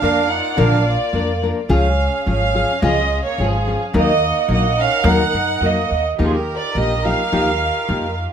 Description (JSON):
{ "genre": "mexican folk, mariachi", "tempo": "107 BPM", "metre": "2/4", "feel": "straight", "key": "Eb minor", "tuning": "A4 = 440 Hz", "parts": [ { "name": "rich chamber violin section", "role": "melody", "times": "0.0-8.2 s", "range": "Ab4 to Gb5", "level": "-20 LUFS", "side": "right 3 dB", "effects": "tape echo" }, { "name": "mellow accordion", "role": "second line", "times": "0.0-8.2 s", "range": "F3 to Bb4", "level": "-24 LUFS", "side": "right 4 dB", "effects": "none" }, { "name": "nylon-string guitar", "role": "accompaniment", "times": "0.0-8.1 s", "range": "Bb2 to Bb4", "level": "-20 LUFS", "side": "left 3 dB", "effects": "none" }, { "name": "warm chamber violin section", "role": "sustained chords", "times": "0.0-8.3 s", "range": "Bb3 to Gb5", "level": "-29 LUFS", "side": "equal", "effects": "none" }, { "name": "upright bass", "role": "bass", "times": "0.0-8.2 s", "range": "Ab1 to Gb2", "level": "-21 LUFS", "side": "equal", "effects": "none" } ], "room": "moderate studio reverb, RT60 0.5 s", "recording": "none", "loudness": "-15 LUFS", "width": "side -8 dB against mid", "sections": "0.0-6.2 A section; 6.2-8.3 B section", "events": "none", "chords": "0.0 Bb; 1.7 Db; 3.9 Ebm; 6.2 Ebadd9", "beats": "0.02 | 0.58 1.14 | 1.70 2.26 | 2.82 3.38 | 3.94 4.49 | 5.05 5.61 | 6.18 6.75 | 7.32 7.88" }